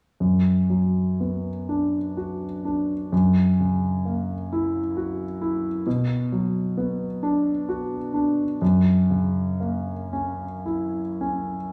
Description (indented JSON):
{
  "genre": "classical, romantic nocturne for solo piano",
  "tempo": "34-45 BPM (dotted quarters)",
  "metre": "6/8",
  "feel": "rubato",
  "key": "B minor",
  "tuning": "A4 = 440 Hz",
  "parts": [
    { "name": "clear concert grand piano", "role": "solo", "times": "0.2-11.7 s", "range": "F#2 to F#4", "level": "-24 LUFS", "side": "equal", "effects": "none" }
  ],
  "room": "moderate recital hall reverb, RT60 1.5 s",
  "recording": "studio reverb",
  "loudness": "-24 LUFS",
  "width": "mono",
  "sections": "0.2-11.7 A section",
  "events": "none",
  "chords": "0.2 Bm/F#; 3.1 F#7; 5.9 Bm; 8.6 F#7"
}